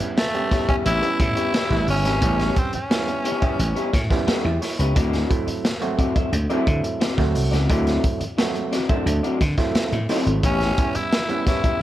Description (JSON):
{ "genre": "funk", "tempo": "88 BPM", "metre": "4/4", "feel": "straight", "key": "A mixolydian", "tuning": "A4 = 441 Hz", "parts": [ { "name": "electric guitar through a small old amp", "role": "accompaniment", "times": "0.0-11.8 s", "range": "B3 to E5", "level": "-27 LUFS", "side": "left 4 dB", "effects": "none" }, { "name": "overdriven clav", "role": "stabs", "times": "0.0-11.8 s", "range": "F#3 to F#5", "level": "-26 LUFS", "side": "right 3 dB", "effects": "none" }, { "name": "vintage slap bass", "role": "bass", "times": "0.0-11.0 s", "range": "G1 to D3", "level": "-22 LUFS", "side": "equal", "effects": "none" }, { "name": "crunchy breakbeat drum kit", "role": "drums", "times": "0.0-11.8 s", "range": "hi-hat, kick drum, snare drum", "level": "-23 LUFS", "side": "equal", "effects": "none" }, { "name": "breathy tenor saxophone", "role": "melody", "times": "0.2-4.1, 10.5-11.8 s", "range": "A3 to E4", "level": "-24 LUFS", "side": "equal", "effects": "none" } ], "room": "light reverb", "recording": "none", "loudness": "-19 LUFS", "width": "side -13 dB against mid", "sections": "0.0-11.8 A section", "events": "clav fill 3.9-5.0", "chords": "0.0 A9; 5.0 D9; 10.4 A9" }